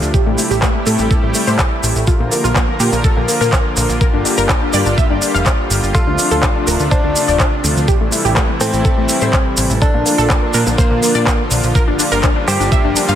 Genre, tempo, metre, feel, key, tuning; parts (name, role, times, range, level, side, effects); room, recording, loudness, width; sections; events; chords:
progressive house; 124 BPM; 4/4; straight; A4 = 442 Hz
supersaw pad; sustained chords; 0.0-13.2 s; Bb2 to Bb4; -20 LUFS; equal; sidechain pumping
analog pluck; arpeggios; 0.0-13.2 s; A3 to F5; -20 LUFS; left 2 dB; chorus, sidechain pumping, dub echo
plucky analog bass; bass; 0.0-13.2 s; D1 to Bb2; -18 LUFS; equal; sidechain pumping
tube shaker; percussion; 0.0-13.2 s; -23 LUFS; right 2 dB
electronic kick drum; drums; 0.1-12.8 s; -15 LUFS; equal
pop drum kit; drums; 0.4-13.1 s; handclaps, hi-hat; -21 LUFS; equal
direct-recorded clean electric guitar; melody; 5.9-13.2 s; Bb3 to G4; -20 LUFS; equal; spring reverb, sidechain pumping, dub echo
light reverb, digital ambience; -12 LUFS; side -10 dB against mid
0.0-13.2 A section
filter sweep on synth pluck 0.0-13.2
0.1 Am7; 2.1 Bb; 4.0 Gm7; 5.9 Dm7; 7.9 Am7; 9.8 Bb; 11.8 Gm7